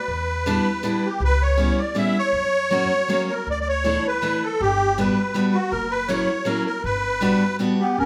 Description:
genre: musette waltz.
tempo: 160 BPM.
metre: 3/4.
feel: swing 54% on 8ths.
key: unclear.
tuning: A4 = 441 Hz.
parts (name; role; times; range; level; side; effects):
musette accordion; melody; 0.0-8.1 s; F#4 to E5; -24 LUFS; equal; none.
upright bass; bass; 0.1-8.1 s; F#1 to F#2; -28 LUFS; equal; none.
picked steel-string acoustic guitar; accompaniment; 0.5-7.8 s; E3 to F#4; -25 LUFS; equal; none.
warm clarinet; second line; 7.8-8.1 s; B3 to C#4; -23 LUFS; equal; none.
room: wet large studio reverb, RT60 1.1 s.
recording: band playing live in one room.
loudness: -22 LUFS.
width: mono.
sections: 0.0-8.1 A section.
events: none.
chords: 0.1 Em7; 1.2 C#m7b5; 2.3 F#; 3.5 Dsus2; 4.6 Gmaj7; 5.7 F#7; 6.8 Gmaj7.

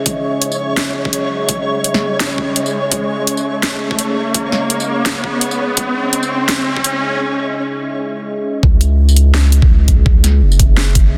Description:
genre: half-time drum and bass.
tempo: 168 BPM.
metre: 4/4.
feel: swing 56% on 16ths, half-time.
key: C# minor.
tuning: A4 = 440 Hz.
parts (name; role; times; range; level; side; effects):
deep dark ambient pad; sustained chords; 0.0-11.2 s; C#4 to E5; -24 LUFS; equal; chorus, built-in reverb, sidechain pumping.
riser; sound effects; 0.2-7.2 s; none; -24 LUFS; equal; none.
flickering grainy texture; texture; 0.0-7.2 s; C#5; -26 LUFS; equal; built-in reverb.
drum and bass drum kit; drums; 0.1-11.0 s; hi-hat, snare drum, tambourine; -22 LUFS; equal; overdrive.
electronic kick drum; drums; 0.1-11.0 s; none; -15 LUFS; equal; overdrive, high-pass filter on kick, high-pass filter on room.
saturated sub bass; bass; 8.6-11.2 s; F#1 to C#2; -13 LUFS; equal; none.
room: light reverb.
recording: dense, heavily limited modern master.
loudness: -15 LUFS.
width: mono.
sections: 0.0-8.6 A section; 8.6-11.2 B section.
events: build-up 0.0-8.6; riser 0.2-7.2; break 7.2-8.6; drop 8.6-11.2.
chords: 0.0 C#madd9.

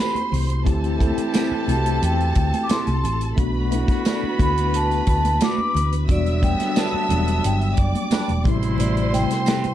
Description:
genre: lush 1970s-style soul.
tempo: 89 BPM.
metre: 4/4.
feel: straight.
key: E minor.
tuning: A4 = 439 Hz.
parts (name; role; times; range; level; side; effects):
vibraphone with medium mallets; melody; 0.0-9.7 s; D5 to D6; -25 LUFS; equal; none.
warm studio violin section; second line; 0.0-9.7 s; A4 to E6; -30 LUFS; equal; none.
mellow tine electric piano; accompaniment; 0.0-9.7 s; C3 to G5; -25 LUFS; left 3 dB; medium stereo tremolo.
electric guitar through a small old amp; riff; 0.0-9.7 s; A3 to B4; -29 LUFS; right 6 dB; phaser.
warm horn section; stabs; 0.0-9.7 s; B2 to A4; -31 LUFS; right 2 dB; none.
warm soul drum kit; drums; 0.2-9.7 s; hi-hat, kick drum, snare drum; -23 LUFS; equal; none.
congas; percussion; 0.2-9.7 s; none; -32 LUFS; right 6 dB; none.
hollow-body short-scale fingered electric bass; bass; 0.3-9.7 s; E1 to E2; -22 LUFS; equal; none.
tambourine; percussion; 1.3-9.6 s; none; -38 LUFS; left 6 dB; none.
room: small room ambience.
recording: dark, warm production.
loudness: -18 LUFS.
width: side -12 dB against mid.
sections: 0.0-9.7 A section.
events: none.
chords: 0.0 Am9; 0.7 D9sus4; 3.4 Bm7; 6.1 Em7; 8.5 Am9.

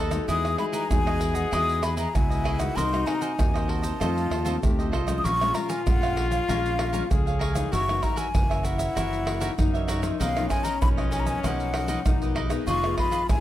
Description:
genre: samba and choro.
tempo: 97 BPM.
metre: 4/4.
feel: straight.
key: unclear.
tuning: A4 = 440 Hz.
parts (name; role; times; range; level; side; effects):
brilliant trombone; second line; 0.0-13.4 s; C#4 to A4; -31 LUFS; left 4 dB; none.
cavaquinho; accompaniment; 0.0-13.2 s; D#4 to Ab5; -34 LUFS; right 4 dB; none.
nylon-string guitar; accompaniment; 0.0-13.4 s; F2 to Ab4; -33 LUFS; left 4 dB; none.
overdriven fingered electric bass; bass; 0.0-13.4 s; F1 to Gb2; -29 LUFS; equal; none.
tube shaker, pandeiro, tamborim and surdo; percussion; 0.1-13.4 s; none; -27 LUFS; right 1 dB; none.
breathy mellow concert flute; melody; 0.3-13.4 s; E#5 to Eb6; -29 LUFS; left 1 dB; none.
room: light reverb.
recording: none.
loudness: -22 LUFS.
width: side -13 dB against mid.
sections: 0.0-13.4 A section.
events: none.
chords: 0.3 Emaj9; 2.8 Cm7b5; 4.0 F7; 5.2 Bbm7; 7.7 Gb6; 10.2 Bmaj9#11; 12.7 Fm7b5.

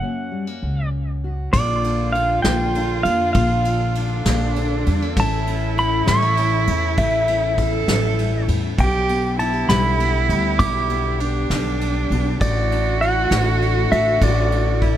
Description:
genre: acoustic folk duo or small band.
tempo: 66 BPM (dotted quarters).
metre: 6/8.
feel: straight.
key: unclear.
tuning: A4 = 440 Hz.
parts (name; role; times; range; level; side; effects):
pedal steel guitar; melody; 0.0-15.0 s; D5 to D6; -22 LUFS; equal; tape echo.
fingerpicked steel-string acoustic guitar; accompaniment; 0.0-15.0 s; F#2 to G4; -25 LUFS; left 4 dB; none.
upright bass; bass; 0.6-15.0 s; A1 to F2; -22 LUFS; equal; none.
rich cello; second line; 1.5-15.0 s; D4 to A4; -24 LUFS; right 5 dB; none.
soft brush drum kit; drums; 1.5-15.0 s; kick drum, ride cymbal, snare drum; -26 LUFS; equal; none.
warm chamber string section; sustained chords; 1.6-15.0 s; C#3 to A4; -31 LUFS; left 3 dB; none.
room: light reverb.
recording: none.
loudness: -17 LUFS.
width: side -11 dB against mid.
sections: 0.0-1.5 A section; 1.5-15.0 B section.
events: none.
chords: 0.0 F#; 1.5 Bb; 5.2 A; 8.8 G/B; 12.4 Dsus2/A.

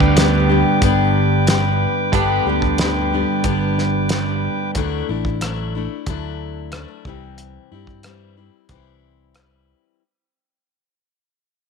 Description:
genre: folk rock and heartland rock.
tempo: 92 BPM.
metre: 4/4.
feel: straight.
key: G major.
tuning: A4 = 440 Hz.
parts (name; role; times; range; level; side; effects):
picked steel-string acoustic guitar; accompaniment; 0.0-10.0 s; G2 to G4; -22 LUFS; left 12 dB; none.
tonewheel organ; sustained chords; 0.0-4.7 s; B4 to D6; -24 LUFS; right 2 dB; stopped rotary speaker.
twelve-string electric guitar; riff; 0.0-4.7 s; G2 to G4; -21 LUFS; right 14 dB; lush chorus.
fingered electric bass; bass; 0.0-9.7 s; G1 to G2; -22 LUFS; right 1 dB; transformer saturation.
cloth-damped thuddy drum kit; drums; 0.0-9.5 s; hi-hat, kick drum, rim click, snare drum; -21 LUFS; equal; none.
room: light reverb.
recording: 1960s-style stereo with parts hard left and right.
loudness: -16 LUFS.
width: side -5 dB against mid.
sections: 0.0-10.0 A section.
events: fade-out 0.0-10.0.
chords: 0.0 G; 4.8 Dadd9; 7.1 C.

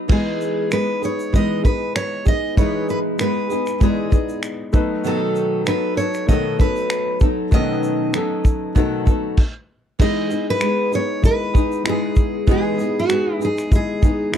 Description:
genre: acoustic pop.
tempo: 97 BPM.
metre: 4/4.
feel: swing 55% on 16ths.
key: E major.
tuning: A4 = 440 Hz.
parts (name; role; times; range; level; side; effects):
nylon-string guitar; accompaniment; 0.0-14.4 s; B2 to A4; -22 LUFS; equal; double-tracked left and right.
fingerpicked steel-string acoustic guitar; melody; 0.1-14.4 s; F#4 to D#5; -23 LUFS; right 2 dB; none.
felt-muted upright piano; accompaniment; 0.1-14.4 s; G#3 to D#5; -28 LUFS; left 4 dB; none.
cloth-damped thuddy drum kit; drums; 0.1-14.4 s; crash cymbal, finger snaps, kick drum, shaker; -17 LUFS; equal; none.
room: little or no reverb.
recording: dry, close 1970s-style studio recording.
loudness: -17 LUFS.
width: side -9 dB against mid.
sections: 0.1-10.0 A section; 10.0-14.4 B section.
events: stop 9.4-10.0.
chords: 0.1 Emaj7; 4.7 B7; 10.0 Emaj7.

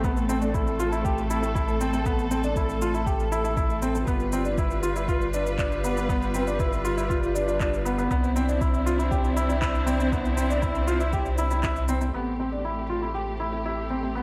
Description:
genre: piano and strings electronica.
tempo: 119 BPM.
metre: 4/4.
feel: straight.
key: A minor.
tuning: A4 = 440 Hz.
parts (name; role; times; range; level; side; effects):
muted studio string section; sustained chords; 0.0-14.2 s; G3 to B4; -32 LUFS; equal; sidechain pumping.
warm baby grand piano; riff; 0.0-14.2 s; B3 to G4; -30 LUFS; equal; analog delay.
warm sub bass; bass; 0.0-14.2 s; G1 to C2; -31 LUFS; equal; sidechain pumping.
electronic kick drum; drums; 0.0-11.7 s; none; -30 LUFS; equal; none.
electronic shaker and handclaps; drums; 0.0-12.1 s; none; -41 LUFS; equal; none.
room: moderate plate reverb, RT60 1.5 s, digital ambience.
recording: dreamy mix soaked in reverb.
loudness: -25 LUFS.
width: mono.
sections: 0.0-12.1 A section; 12.1-14.2 B section.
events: none.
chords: 0.0 Am; 4.1 G7; 8.1 Cadd9; 12.1 Am7.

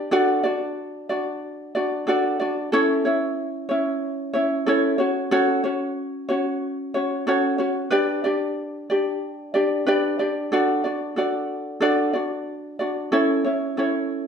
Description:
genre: pop.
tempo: 92 BPM.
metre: 4/4.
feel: swing 55% on 16ths.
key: D major.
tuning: A4 = 440 Hz.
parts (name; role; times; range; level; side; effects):
ukulele; solo; 0.0-14.3 s; C#4 to D5; -21 LUFS; equal; none.
room: wet large studio reverb, RT60 1.1 s.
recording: band playing live in one room.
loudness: -21 LUFS.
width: side -7 dB against mid.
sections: 0.0-10.5 A section; 10.5-14.3 B section.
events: none.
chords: 0.1 D; 2.7 A/C#; 5.0 F#m; 7.9 G; 10.5 D; 13.1 A/C#.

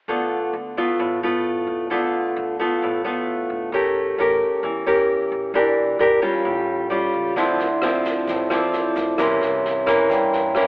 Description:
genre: bossa nova.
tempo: 132 BPM.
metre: 4/4.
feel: straight.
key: D dorian, D minor from 7.4 s.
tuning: A4 = 439 Hz.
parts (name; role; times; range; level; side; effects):
nylon-string guitar; accompaniment; 0.1-10.7 s; G2 to Bb4; -19 LUFS; equal; none.
upright bass; bass; 0.1-10.7 s; E1 to G2; -39 LUFS; equal; none.
vibraphone with soft mallets; accompaniment; 7.4-10.7 s; Bb4 to D6; -22 LUFS; right 1 dB; none.
open jazz drum kit; drums; 7.4-10.7 s; kick drum, rim click, snare drum; -29 LUFS; equal; none.
egg shaker; percussion; 7.4-10.6 s; none; -52 LUFS; right 1 dB; none.
room: moderate echo chamber reverb, RT60 2.5 s.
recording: heard from further back in the room, telephone sound.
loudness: -18 LUFS.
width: side -24 dB against mid.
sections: 0.1-7.4 A section; 7.4-10.7 B section.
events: vibraphone fill 9.6-10.7.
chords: 0.1 Dm6; 3.7 A7b9; 5.5 Em7b5; 6.5 Aaug7; 7.4 Dm9; 9.2 C7b9.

